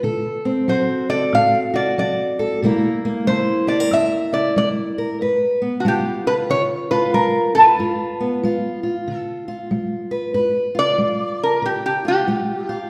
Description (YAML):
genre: acoustic country blues, solo or duo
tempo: 93 BPM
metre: 4/4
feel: swing 63% on 8ths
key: G mixolydian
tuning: A4 = 440 Hz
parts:
  - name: fingerpicked steel-string acoustic guitar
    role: accompaniment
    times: 0.0-12.9 s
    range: G2 to B4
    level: -23 LUFS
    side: equal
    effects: none
  - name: lap resonator guitar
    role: melody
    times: 0.7-12.9 s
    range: F#4 to F5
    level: -20 LUFS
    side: equal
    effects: none
room: wet recital hall reverb, RT60 1.5 s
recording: recorded in a church or concert hall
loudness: -19 LUFS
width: mono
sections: 0.0-10.4 A section; 10.4-12.9 B section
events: resonator guitar played with a steel bar solo 10.4-12.9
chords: 0.0 D7; 2.6 C7; 5.2 G7